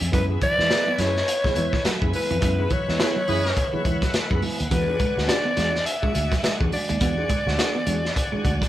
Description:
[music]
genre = funk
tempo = 105 BPM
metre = 4/4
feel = swing 60% on 16ths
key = unclear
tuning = A4 = 440 Hz
[part]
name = hollow-body jazz guitar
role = accompaniment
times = 0.0-8.7 s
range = B3 to G#4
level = -33 LUFS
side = left 1 dB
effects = tube saturation
[part]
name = overdriven tonewheel organ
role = sustained chords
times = 0.0-8.7 s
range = B4 to G#5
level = -34 LUFS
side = left 1 dB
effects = slow rotary speaker, chorus vibrato
[part]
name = vintage muted fingered electric bass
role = bass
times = 0.0-8.6 s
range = D2 to F#2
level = -27 LUFS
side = equal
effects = none
[part]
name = crunchy breakbeat drum kit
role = drums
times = 0.0-8.7 s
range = hi-hat, kick drum, snare drum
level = -25 LUFS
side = equal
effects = none
[part]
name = growling alto saxophone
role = melody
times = 0.1-8.7 s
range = F#4 to E5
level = -25 LUFS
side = left 1 dB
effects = none
[part]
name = clean electric guitar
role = riff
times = 0.1-8.7 s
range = E3 to B3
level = -31 LUFS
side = right 4 dB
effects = none
[part]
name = reed electric piano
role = stabs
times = 0.1-8.6 s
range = E3 to F#4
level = -32 LUFS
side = right 4 dB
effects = overdrive
[part]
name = clear horn section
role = second line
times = 3.0-3.7 s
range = E4 to B4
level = -29 LUFS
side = equal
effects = none
[sound]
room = light reverb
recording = band playing live in one room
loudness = -20 LUFS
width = side -13 dB against mid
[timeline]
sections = 0.0-8.7 A section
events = band accent 2.4-4.7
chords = 0.1 F#9sus4; 4.7 E9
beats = | 0.13 0.70 1.28 1.85 | 2.42 3.00 3.57 4.14 | 4.72 5.29 5.87 6.44 | 7.01 7.59 8.16

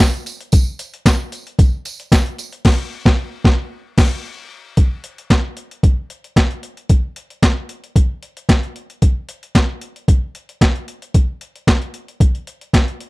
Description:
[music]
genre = funk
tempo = 113 BPM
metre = 4/4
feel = straight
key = none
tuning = none
[part]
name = boom bap sampler-style drum kit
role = drums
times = 0.0-13.1 s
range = crash cymbal, handclaps, hi-hat, kick drum, snare drum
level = -13 LUFS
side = equal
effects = overdrive
[part]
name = tambourine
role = percussion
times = 0.0-2.5 s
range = none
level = -30 LUFS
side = right 4 dB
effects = none
[sound]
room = little or no reverb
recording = dry, close 1970s-style studio recording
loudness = -15 LUFS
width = side -24 dB against mid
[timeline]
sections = 0.0-4.8 A section; 4.8-13.1 B section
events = band accent 2.6-4.8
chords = none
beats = | 0.52 1.05 1.59 2.12 | 2.65 3.18 3.71 4.24 | 4.77 5.30 5.83 6.37 | 6.90 7.43 7.96 8.49 | 9.02 9.55 10.08 10.61 | 11.14 11.68 12.21 12.74

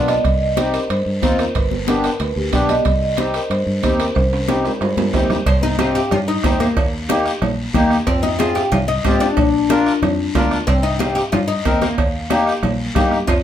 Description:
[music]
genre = latin, cumbia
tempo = 184 BPM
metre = 4/4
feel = straight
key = C harmonic minor, C minor from 5.5 s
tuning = A4 = 440 Hz
[part]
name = accordion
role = accompaniment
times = 0.0-13.2 s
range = Bb3 to Bb4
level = -20 LUFS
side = left 2 dB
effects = none
[part]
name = fingered electric bass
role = bass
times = 0.0-13.4 s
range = G1 to Ab2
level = -22 LUFS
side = equal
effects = none
[part]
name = marimba with medium mallets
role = melody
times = 0.1-5.4 s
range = G4 to Eb5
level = -21 LUFS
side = right 1 dB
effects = none
[part]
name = bombo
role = percussion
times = 0.1-13.4 s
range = none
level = -22 LUFS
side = right 2 dB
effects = none
[part]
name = congas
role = percussion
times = 0.1-13.4 s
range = none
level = -24 LUFS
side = left 1 dB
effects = none
[part]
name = guiro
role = percussion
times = 0.1-13.4 s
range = none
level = -32 LUFS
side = left 2 dB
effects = none
[part]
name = timbales and cowbell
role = percussion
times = 0.1-13.4 s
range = none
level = -27 LUFS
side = right 3 dB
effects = none
[part]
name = oud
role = second line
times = 5.5-13.3 s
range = Bb3 to G4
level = -21 LUFS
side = left 4 dB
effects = none
[sound]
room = wet small room reverb, RT60 0.6 s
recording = heard from further back in the room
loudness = -15 LUFS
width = side -10 dB against mid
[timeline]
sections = 0.0-5.5 A section; 5.5-13.4 B section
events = drum fill 4.2-5.5; oud solo 5.5-13.4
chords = 0.2 Cm; 1.6 G; 2.9 Cm; 6.8 Eb; 8.1 Fm; 9.4 Bb; 10.7 Cm; 12.0 Eb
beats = | 0.25 0.57 0.90 1.22 | 1.55 1.88 2.20 2.53 | 2.85 3.18 3.51 3.83 | 4.16 4.49 4.81 5.14 | 5.46 5.79 6.12 6.44 | 6.77 7.09 7.42 7.74 | 8.07 8.40 8.72 9.05 | 9.37 9.70 10.03 10.35 | 10.68 11.00 11.33 11.65 | 11.98 12.30 12.63 12.96 | 13.28

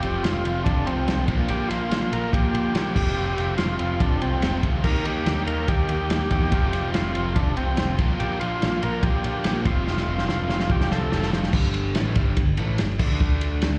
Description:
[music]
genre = classic rock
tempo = 143 BPM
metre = 4/4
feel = straight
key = unclear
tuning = A4 = 440 Hz
[part]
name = overdriven tonewheel organ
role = melody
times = 0.0-11.3 s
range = C4 to Bb4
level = -31 LUFS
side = equal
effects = none
[part]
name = biting overdriven guitar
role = riff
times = 0.0-13.8 s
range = F2 to Eb4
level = -34 LUFS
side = equal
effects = slapback echo
[part]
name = crunchy overdriven guitar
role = riff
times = 0.0-11.5 s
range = F2 to G4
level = -36 LUFS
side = equal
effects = slapback echo
[part]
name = overdriven electric guitar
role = riff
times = 0.0-13.8 s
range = F2 to G4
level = -35 LUFS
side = equal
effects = slapback echo
[part]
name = modern bright picked electric bass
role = bass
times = 0.0-13.8 s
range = F1 to E2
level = -28 LUFS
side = equal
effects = none
[part]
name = vintage drum kit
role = drums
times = 0.0-13.7 s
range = crash cymbal, kick drum, ride cymbal, snare drum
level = -28 LUFS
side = equal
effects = none
[sound]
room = moderate club reverb, RT60 0.6 s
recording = live gig heard through the venue's PA, recital hall reverb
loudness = -23 LUFS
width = mono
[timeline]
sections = 0.0-11.5 A section; 11.5-13.8 B section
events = drum fill 9.9-11.5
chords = 0.0 F; 1.3 Bb; 3.0 F; 4.8 Eb; 6.5 F; 8.0 Bb; 9.7 F; 11.5 G5; 13.0 D5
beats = 0.24 0.66 1.08 | 1.50 1.92 2.33 2.75 | 3.17 3.59 4.01 4.43 | 4.85 5.27 5.68 6.10 | 6.52 6.94 7.36 7.78 | 8.20 8.61 9.03 9.45 | 9.87 10.29 10.70 11.12 | 11.54 11.95 12.37 12.79 | 13.20 13.62

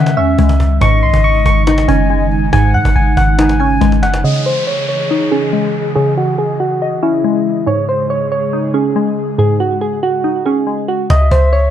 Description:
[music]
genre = hip hop, trap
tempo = 140 BPM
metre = 4/4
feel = half-time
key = C# minor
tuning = A4 = 440 Hz
[part]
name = soft electric-piano-like synth keys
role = melody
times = 0.0-11.7 s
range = E4 to C#6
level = -17 LUFS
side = right 1 dB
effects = chorus, low-pass filter, digital delay
[part]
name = concert flute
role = second line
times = 0.0-4.2, 11.1-11.7 s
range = D#5 to G#5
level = -22 LUFS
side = left 8 dB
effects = digital delay
[part]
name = glassy wavetable pluck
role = accompaniment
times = 0.0-11.1 s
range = G#2 to D#5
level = -17 LUFS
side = equal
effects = chorus, low-pass filter
[part]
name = airy breathy pad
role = sustained chords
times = 0.0-11.1 s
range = C#3 to D#5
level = -21 LUFS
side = right 2 dB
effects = chorus, low-pass filter
[part]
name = clean 808-style bass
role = bass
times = 0.0-4.2, 11.1-11.7 s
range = F#1 to C#3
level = -13 LUFS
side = equal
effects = none
[part]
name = cajon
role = drums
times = 0.1-4.2, 11.1-11.6 s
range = none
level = -22 LUFS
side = equal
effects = none
[part]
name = downlifter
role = sound effects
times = 4.2-7.7 s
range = none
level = -26 LUFS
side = left 1 dB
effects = none
[sound]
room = light reverb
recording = dark, warm production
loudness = -11 LUFS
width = side -10 dB against mid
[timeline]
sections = 0.0-4.2 A section; 4.2-11.1 B section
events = drum fill 3.8-4.2; filter sweep 4.2-11.1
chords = 0.0 C#madd9; 0.8 G#sus4; 4.2 C#madd9; 7.7 G#sus4; 11.1 C#madd9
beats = 0.39 | 0.81 1.24 1.67 2.10 | 2.53 2.96 3.39 3.81 | 4.24 4.67 5.10 5.53 | 5.96 6.39 6.81 7.24 | 7.67 8.10 8.53 8.96 | 9.39 9.81 10.24 10.67 | 11.10 11.53

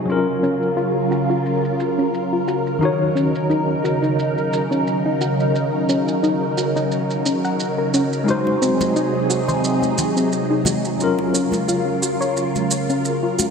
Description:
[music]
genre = sunset chillout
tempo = 88 BPM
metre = 4/4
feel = swing 55% on 16ths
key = Eb dorian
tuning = A4 = 439 Hz
[part]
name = mellow tine electric piano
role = accompaniment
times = 0.0-13.5 s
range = Eb3 to Db5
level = -23 LUFS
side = moving between left 3 dB and right 4 dB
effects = medium tremolo, auto-pan, ping-pong delay
[part]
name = soft string machine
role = sustained chords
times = 0.0-13.5 s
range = C3 to Bb4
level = -20 LUFS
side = right 1 dB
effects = phaser, ensemble chorus
[part]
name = shaker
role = drums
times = 0.1-13.5 s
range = none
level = -28 LUFS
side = right 4 dB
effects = overdrive, low-pass filter on perc, low-pass filter on toms, low-pass filter on snare, low-pass filter on room
[part]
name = soft round pluck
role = arpeggios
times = 0.4-13.5 s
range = C4 to Gb5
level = -24 LUFS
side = left 2 dB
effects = chorus, ping-pong delay
[part]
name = bongos and congas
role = percussion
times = 8.5-13.5 s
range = none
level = -28 LUFS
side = left 2 dB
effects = none
[sound]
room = wet lush hall reverb, RT60 2.5 s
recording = bright 1980s-style digital production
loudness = -17 LUFS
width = side -6 dB against mid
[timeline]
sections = 0.0-13.5 A section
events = filter sweep on drum 0.0-13.5; filter sweep on synth arpeggio sound 0.0-13.5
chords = 0.1 Gbmaj7; 2.8 Ebm7; 8.3 Ab7; 11.0 Gbmaj7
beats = | 0.10 0.78 1.46 2.14 | 2.82 3.50 4.19 4.87 | 5.55 6.23 6.91 7.60 | 8.28 8.96 9.64 10.32 | 11.01 11.69 12.37 13.05

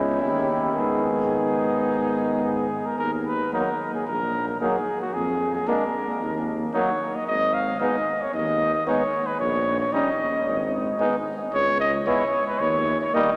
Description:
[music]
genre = classical, brass quintet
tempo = 112 BPM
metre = 4/4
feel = straight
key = Eb minor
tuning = A4 = 442 Hz
[part]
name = clear trumpet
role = second line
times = 0.0-13.3 s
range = D4 to E4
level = -35 LUFS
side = equal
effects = none
[part]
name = brilliant trombone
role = accompaniment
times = 0.0-13.3 s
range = D#3 to Ab3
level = -33 LUFS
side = equal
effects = none
[part]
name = warm French horn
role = accompaniment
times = 0.0-13.3 s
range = Bb3 to Db4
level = -31 LUFS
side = equal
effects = none
[part]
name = clear tuba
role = bass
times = 0.0-13.0 s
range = Ab1 to G#2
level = -32 LUFS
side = equal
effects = none
[part]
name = mellow trumpet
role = melody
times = 0.2-13.4 s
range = Gb4 to F5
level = -27 LUFS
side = equal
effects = none
[sound]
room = wet cathedral reverb, RT60 6.2 s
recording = none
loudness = -24 LUFS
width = mono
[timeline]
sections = 0.0-3.0 A section; 3.0-13.4 B section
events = none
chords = 0.2 D#7; 0.8 G#m; 3.0 Ebm; 5.1 Bb7(no3)/F; 6.2 Ebm; 7.3 Abm; 9.4 Eb7/Bb; 10.5 Abm; 11.5 C#7(no3); 12.6 D#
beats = 0.21 | 0.77 1.33 1.88 2.44 | 2.99 3.53 4.07 4.61 | 5.14 5.68 6.21 6.74 | 7.27 7.81 8.34 8.87 | 9.40 9.93 10.47 11.00 | 11.53 12.07 12.60 13.14

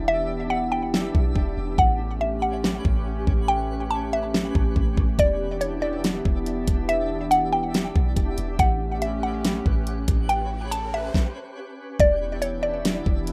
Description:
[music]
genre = hip hop, atmospheric cloud-rap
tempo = 141 BPM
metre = 4/4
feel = half-time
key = E dorian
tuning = A4 = 441 Hz
[part]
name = hollow soft pad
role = sustained chords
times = 0.0-13.3 s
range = E3 to G4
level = -33 LUFS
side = equal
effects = chorus, sidechain pumping
[part]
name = soft 808-style bass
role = bass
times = 0.0-13.3 s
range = E1 to B1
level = -31 LUFS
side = equal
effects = none
[part]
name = twinkling granular texture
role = texture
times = 0.0-13.3 s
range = C#4 to F#6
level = -39 LUFS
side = equal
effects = built-in reverb
[part]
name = mallet-like synth pluck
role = melody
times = 0.1-13.2 s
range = C#5 to A5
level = -26 LUFS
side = equal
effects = chorus, phaser, digital delay
[part]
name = smooth R&B drum kit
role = drums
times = 0.9-13.3 s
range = hi-hat, kick drum, snare drum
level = -25 LUFS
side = equal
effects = none
[part]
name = riser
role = sound effects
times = 10.2-11.1 s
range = none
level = -44 LUFS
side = equal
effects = none
[sound]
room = little or no reverb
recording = rough home demo mix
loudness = -24 LUFS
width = mono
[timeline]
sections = 0.0-12.0 A section; 12.0-13.3 B section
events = break 0.0-5.2; riser 10.2-12.0; stop 11.1-12.0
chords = 0.0 Em7; 1.8 A13; 5.2 Em7; 8.6 A13; 12.0 Em7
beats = | 0.08 0.51 0.93 1.36 | 1.78 2.21 2.63 3.06 | 3.48 3.91 4.34 4.76 | 5.19 5.61 6.04 6.46 | 6.89 7.32 7.74 8.17 | 8.59 9.02 9.44 9.87 | 10.29 10.72 11.14 11.57 | 12.00 12.42 12.85 13.27

